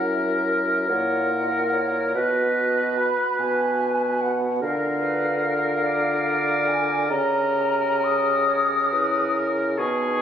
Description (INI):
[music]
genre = classical, slow romantic movement for wind quintet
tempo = 48 BPM (dotted quarters)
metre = 6/8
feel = rubato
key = Eb minor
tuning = A4 = 439 Hz
[part]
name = mellow hollow silver concert flute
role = melody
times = 0.0-10.2 s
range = D#5 to Eb6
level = -26 LUFS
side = left 2 dB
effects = none
[part]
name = clear oboe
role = second line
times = 0.0-10.2 s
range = Ab4 to B4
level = -26 LUFS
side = left 1 dB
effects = none
[part]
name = clear clarinet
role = accompaniment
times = 0.0-10.2 s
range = Ab4 to Eb5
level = -29 LUFS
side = right 3 dB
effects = none
[part]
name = dark French horn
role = accompaniment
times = 0.0-10.2 s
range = Eb4 to G4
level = -33 LUFS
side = left 1 dB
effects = none
[part]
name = mellow bassoon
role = bass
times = 0.0-10.2 s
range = Gb2 to D3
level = -25 LUFS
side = right 1 dB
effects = none
[sound]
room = moderate concert hall reverb, RT60 2.4 s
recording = recorded on a phone in the room, studio reverb, compression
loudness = -20 LUFS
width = side -8 dB against mid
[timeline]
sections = 0.0-10.2 A section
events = none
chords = 0.0 Gb7; 2.1 B; 4.6 Bb/D; 7.1 Eb7/Db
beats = 0.90 | 2.15 3.38 | 4.61 5.83 | 7.09 8.49 | 9.78